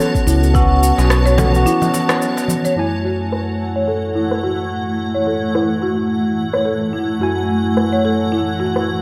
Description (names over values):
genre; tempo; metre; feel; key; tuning
organic downtempo; 108 BPM; 4/4; swing 56% on 16ths; F# minor; A4 = 440 Hz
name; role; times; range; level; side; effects
bright tine electric piano; accompaniment; 0.0-9.0 s; F#2 to G#5; -24 LUFS; equal; sidechain pumping, low-pass filter, delay, slapback echo
granular cloud pad; sustained chords; 0.0-9.0 s; A3 to A5; -23 LUFS; equal; built-in reverb, sidechain pumping
folk marimba with soft mallets; arpeggios; 0.0-9.0 s; E4 to C#5; -24 LUFS; equal; vintage 12-bit sampler grit, low-pass filter, delay
electronic shaker, rim click and congas; drums; 0.0-8.9 s; none; -26 LUFS; equal; overdrive, low-pass filter on perc, low-pass filter on snare, low-pass filter on room
electronic kick drum; drums; 0.1-0.7 s; none; -19 LUFS; equal; overdrive
smooth synth bass; bass; 0.3-1.7 s; B1 to C#2; -16 LUFS; equal; none
darbuka; percussion; 0.3-2.6 s; none; -26 LUFS; equal; slapback echo
room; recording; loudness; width
wet lush hall reverb, RT60 1.6 s; big arena sound; -17 LUFS; mono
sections
0.0-2.8 A section; 2.8-9.0 B section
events
break 1.7-2.8; filter sweep on marimba 2.8-9.0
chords
0.0 A6; 2.8 F#m7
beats
| 0.55 1.10 1.66 2.21 | 2.77 3.33 3.88 4.44 | 4.99 5.55 6.10 6.66 | 7.21 7.77 8.32 8.88